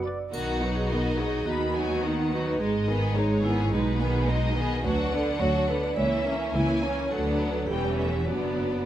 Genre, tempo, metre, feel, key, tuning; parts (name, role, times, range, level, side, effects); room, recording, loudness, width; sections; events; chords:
cinematic, playful, whimsical film cue; 106 BPM; 2/4; straight; B major, B minor from 4.8 s; A4 = 440 Hz
rich symphonic violin section; melody; 0.0-8.9 s; B4 to B5; -36 LUFS; left 5 dB
vibraphone with medium mallets; melody; 0.0-8.9 s; D#4 to E5; -30 LUFS; right 2 dB
rich chamber violin section; second line; 0.0-8.9 s; A#3 to D5; -31 LUFS; left 2 dB
rich chamber cello section; bass; 0.0-8.9 s; C#2 to D#3; -30 LUFS; right 1 dB
rich chamber double bass section; bass; 0.0-8.9 s; E1 to D#2; -32 LUFS; right 1 dB
rich chamber viola section; accompaniment; 0.3-8.9 s; D3 to D#4; -32 LUFS; equal
triangle; percussion; 0.3-1.4 s; -49 LUFS; left 2 dB
light reverb; close, detailed microphones; -24 LUFS; side -12 dB against mid
0.3-8.9 A section
0.3 B; 1.5 B/D#; 2.6 G#m; 3.7 G#m/B; 4.8 Bm/D; 6.0 A#dim/C#; 7.1 Bm/D; 7.7 C#m7b5/E; 8.3 Bm/F#